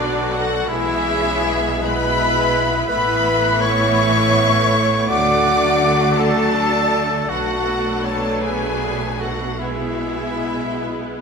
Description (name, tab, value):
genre	cinematic, emotional film score for orchestra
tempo	54 BPM (dotted quarters)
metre	6/8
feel	uneven beats, rubato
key	unclear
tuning	A4 = 442 Hz
part	rich studio violin section	melody	0.0-11.2 s	D5 to D6	-23 LUFS	left 4 dB	none
part	bright clarinet	second line	0.0-11.2 s	D4 to D5	-25 LUFS	left 1 dB	none
part	flute section	second line	0.0-11.2 s	F#4 to F#5	-25 LUFS	right 1 dB	none
part	mellow cor anglais	second line	0.0-11.2 s	D4 to D5	-24 LUFS	right 3 dB	none
part	warm studio violin section	second line	0.0-11.2 s	A3 to F#4	-29 LUFS	left 3 dB	none
part	clear studio viola section	accompaniment	0.0-11.2 s	D3 to B3	-26 LUFS	right 1 dB	none
part	warm French horn section	sustained chords	0.0-11.2 s	G#3 to D5	-26 LUFS	left 4 dB	none
part	dark studio double bass section	bass	0.0-11.2 s	A1 to D2	-27 LUFS	right 3 dB	none
part	rich studio cello section	bass	0.0-11.2 s	A2 to D3	-27 LUFS	right 3 dB	none
room	wet scoring stage reverb, RT60 1.6 s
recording	none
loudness	-16 LUFS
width	side -5 dB against mid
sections	0.0-11.2 A section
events	none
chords	0.0 Bm7; 0.7 E/B; 2.9 Aadd9; 5.1 D; 7.3 Bm7; 9.6 E/B